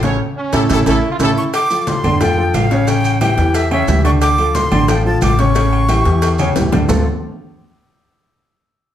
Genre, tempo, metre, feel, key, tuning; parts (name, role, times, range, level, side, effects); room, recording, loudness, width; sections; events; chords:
latin, salsa; 179 BPM; 4/4; straight; D minor; A4 = 440 Hz
clear horn section; melody; 0.0-1.3 s; E4 to C#5; -22 LUFS; equal
warm grand piano; accompaniment; 0.0-7.0 s; C#3 to D5; -18 LUFS; equal
upright bass; bass; 0.0-7.0 s; A1 to F2; -17 LUFS; equal
congas; percussion; 0.0-7.0 s; -22 LUFS; equal
cowbell and bongos; percussion; 0.0-7.0 s; -25 LUFS; left 5 dB
maracas; percussion; 0.0-7.0 s; -32 LUFS; right 4 dB
brilliant trombone section; second line; 0.4-1.5 s; C#4 to F4; -22 LUFS; right 3 dB
timbales and agogo bells; percussion; 0.5-7.0 s; -23 LUFS; right 2 dB
breathy bright jazz flute; melody; 1.4-6.6 s; E5 to D6; -19 LUFS; equal
moderate large studio reverb, RT60 0.8 s; heard from further back in the room; -12 LUFS; side -11 dB against mid
0.0-1.5 A section; 1.5-6.9 B section; 6.9-8.2 C section
drum fill 0.2-1.5, 5.6-6.9; band accent 0.2-1.5
0.2 A7; 1.5 Dm7; 2.9 A7; 4.2 Dm7; 5.6 A7; 6.9 Dm7